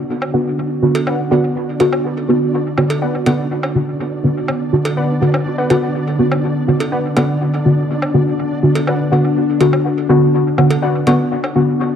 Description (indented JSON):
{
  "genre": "dub techno",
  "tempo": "123 BPM",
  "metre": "4/4",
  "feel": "straight",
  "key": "B minor",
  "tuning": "A4 = 440 Hz",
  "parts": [
    { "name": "warbly tape-like pad", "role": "sustained chords", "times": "0.0-12.0 s", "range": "D3 to F#4", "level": "-20 LUFS", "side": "equal", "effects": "chorus, built-in reverb, phaser, vintage 12-bit sampler grit" },
    { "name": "deep mellow chord stab", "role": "stabs", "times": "0.0-12.0 s", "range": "D3 to F#4", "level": "-15 LUFS", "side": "equal", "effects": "chorus, phaser, dub echo" },
    { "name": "flickering grainy texture", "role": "texture", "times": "0.0-12.0 s", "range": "D4", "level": "-27 LUFS", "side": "right 1 dB", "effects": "built-in reverb" },
    { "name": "woodblock and cowbell", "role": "percussion", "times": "0.2-11.5 s", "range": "none", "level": "-25 LUFS", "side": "right 1 dB", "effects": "overdrive, dub echo" },
    { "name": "warbly dusty pluck", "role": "riff", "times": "1.1-11.2 s", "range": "B4 to F#5", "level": "-25 LUFS", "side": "left 2 dB", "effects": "chorus, cassette tape, dub echo" }
  ],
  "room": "wet echo chamber reverb, RT60 1.5 s",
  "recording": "lossy compression artefacts",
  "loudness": "-13 LUFS",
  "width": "side -8 dB against mid",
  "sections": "0.0-12.0 A section",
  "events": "filter sweep on synth stab 0.0-12.0",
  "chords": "0.0 Bm",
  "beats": "| 0.09 0.58 1.07 1.56 | 2.04 2.53 3.02 3.51 | 4.00 4.48 4.97 5.46 | 5.95 6.43 6.92 7.41 | 7.90 8.39 8.87 9.36 | 9.85 10.34 10.82 11.31 | 11.80"
}